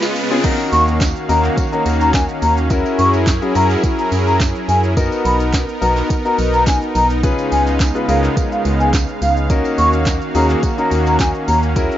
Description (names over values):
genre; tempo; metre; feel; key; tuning
dance-pop; 106 BPM; 4/4; straight; Eb minor; A4 = 439 Hz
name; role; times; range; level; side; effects
soft supersaw; sustained chords; 0.0-12.0 s; Db3 to F5; -20 LUFS; right 1 dB; sidechain pumping
smooth R&B drum kit; drums; 0.0-12.0 s; crash cymbal, handclaps, hi-hat, kick drum, shaker, snare drum; -20 LUFS; equal; overdrive
tambourine; percussion; 0.2-11.9 s; none; -34 LUFS; right 11 dB; none
clear concert grand piano; accompaniment; 0.3-12.0 s; B3 to Cb5; -21 LUFS; left 3 dB; sidechain pumping
mellow hollow concert flute; melody; 0.7-11.6 s; F5 to Db6; -18 LUFS; left 1 dB; sidechain pumping, tape echo
organ-like FM bass; bass; 0.7-11.9 s; B1 to Gb2; -18 LUFS; equal; sidechain pumping
room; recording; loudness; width
little or no reverb; rough home demo mix, nothing above 7.6 kHz; -13 LUFS; side -12 dB against mid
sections
0.4-12.0 A section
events
drum fill 0.0-0.4; drop 0.4-12.0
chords
0.4 Ebm7; 2.7 Gb7; 5.0 Bmaj7; 7.2 Db7; 9.5 Ebm7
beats
| 0.44 1.01 1.57 2.14 | 2.71 3.27 3.84 4.40 | 4.97 5.54 6.10 6.67 | 7.24 7.80 8.37 8.93 | 9.50 10.06 10.63 11.20 | 11.76